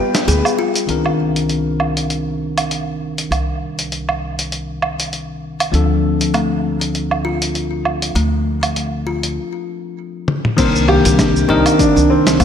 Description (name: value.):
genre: sunset chillout.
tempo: 99 BPM.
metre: 4/4.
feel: swing 56% on 16ths.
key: C dorian.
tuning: A4 = 441 Hz.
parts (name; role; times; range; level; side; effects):
dark baby grand piano; melody; 0.0-0.5, 10.6-12.4 s; C4 to B4; -18 LUFS; left 1 dB; digital delay, slapback echo.
bell-like tine electric piano; accompaniment; 0.0-12.4 s; Eb3 to G5; -20 LUFS; moving between left 5 dB and right 4 dB; auto-pan, ping-pong delay, slapback echo.
kalimba; arpeggios; 0.0-0.9, 6.3-12.4 s; A3 to Ab4; -23 LUFS; left 4 dB; ping-pong delay, slapback echo.
dusty soul sampler-style drum kit; drums; 0.1-12.4 s; crash cymbal, hi-hat, shaker, snare drum, toms, woodblock; -20 LUFS; right 2 dB; none.
upright bass; bass; 0.3-12.4 s; C2 to D2; -21 LUFS; equal; none.
electronic kick drum; drums; 10.6-12.4 s; none; -19 LUFS; equal; overdrive.
room: wet concert hall reverb, RT60 2.1 s.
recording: big arena sound.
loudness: -15 LUFS.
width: side -8 dB against mid.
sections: 0.9-10.6 A section; 10.6-12.4 B section.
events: kick drops out 0.3-0.9; break 9.4-10.6; drum fill 10.3-10.6.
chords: 0.0 G7b9; 0.9 Cm9; 5.7 Dm7; 10.6 Cm9.